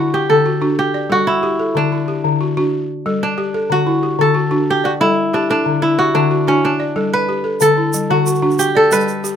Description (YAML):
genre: west african traditional, West African string and xylophone music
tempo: 123 BPM (dotted quarters)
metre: 12/8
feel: straight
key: D major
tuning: A4 = 440 Hz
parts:
  - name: kora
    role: melody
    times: 0.0-9.4 s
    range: C#4 to B4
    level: -16 LUFS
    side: right 1 dB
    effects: none
  - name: balafon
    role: arpeggios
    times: 0.0-9.4 s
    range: D3 to D5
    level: -17 LUFS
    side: left 2 dB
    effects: none
  - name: tube shaker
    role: percussion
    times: 7.6-9.3 s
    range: none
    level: -24 LUFS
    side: right 9 dB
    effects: none
room: wet small room reverb, RT60 0.5 s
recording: rough home demo mix, faint mains hum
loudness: -13 LUFS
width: side -8 dB against mid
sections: 0.0-9.4 A section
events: none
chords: 0.0 D; 0.8 G5; 1.8 D; 2.7 G5; 3.7 D; 4.7 G5; 5.7 D; 6.6 G; 7.6 D; 8.6 G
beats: 0.29 0.78 1.27 | 1.76 2.24 2.73 3.22 | 3.71 4.20 4.68 5.17 | 5.66 6.15 6.64 7.13 | 7.61 8.10 8.59 9.08